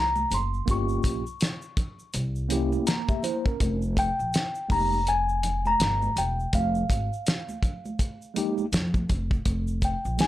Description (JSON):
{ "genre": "hip hop, jazz-hop", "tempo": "82 BPM", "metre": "4/4", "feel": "swing 61% on 16ths", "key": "F minor", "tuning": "A4 = 440 Hz", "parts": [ { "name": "celesta", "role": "melody", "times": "0.0-10.3 s", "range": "F5 to Db6", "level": "-27 LUFS", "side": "left 1 dB", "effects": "none" }, { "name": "upright bass", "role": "bass", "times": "0.0-10.2 s", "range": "E1 to F2", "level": "-28 LUFS", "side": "equal", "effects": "none" }, { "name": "congas and egg shaker", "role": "percussion", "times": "0.2-10.3 s", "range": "none", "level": "-39 LUFS", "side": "right 3 dB", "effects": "none" }, { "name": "cloth-damped thuddy drum kit", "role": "drums", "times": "0.3-10.3 s", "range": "hi-hat, kick drum, snare drum", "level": "-26 LUFS", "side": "equal", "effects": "none" }, { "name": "mellow tine electric piano", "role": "accompaniment", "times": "0.7-10.3 s", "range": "Ab3 to Bb5", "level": "-28 LUFS", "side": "equal", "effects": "medium stereo tremolo" } ], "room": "little or no reverb", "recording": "dry, gritty hardware recording", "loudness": "-24 LUFS", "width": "side -14 dB against mid", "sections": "0.0-9.5 A section", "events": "tine electric piano fill 2.5-3.6", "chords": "0.0 Bbsus2; 0.7 Gm7b5; 2.1 C7b9; 3.6 Fmadd9; 9.5 Fsus4" }